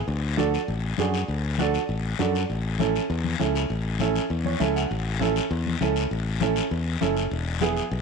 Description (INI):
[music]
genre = latin, cumbia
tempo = 199 BPM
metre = 4/4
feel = straight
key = A major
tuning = A4 = 440 Hz
[part]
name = modern bright fingered electric bass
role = bass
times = 0.1-8.0 s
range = E1 to F#2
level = -27 LUFS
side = left 2 dB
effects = none
[part]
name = guiro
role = percussion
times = 0.1-8.0 s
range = none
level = -33 LUFS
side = left 11 dB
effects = none
[part]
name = warm upright piano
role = accompaniment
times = 0.4-7.8 s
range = B3 to F#5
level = -27 LUFS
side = right 9 dB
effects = none
[part]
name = congas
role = percussion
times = 0.4-7.8 s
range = none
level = -31 LUFS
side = left 12 dB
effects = none
[sound]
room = moderate echo chamber reverb, RT60 1.4 s, small room ambience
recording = 1960s-style stereo with parts hard left and right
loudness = -23 LUFS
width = side -5 dB against mid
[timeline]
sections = 0.0-4.9 A section; 4.9-8.0 A section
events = upright piano fill 4.3-4.9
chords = 0.1 D; 2.5 A; 7.3 E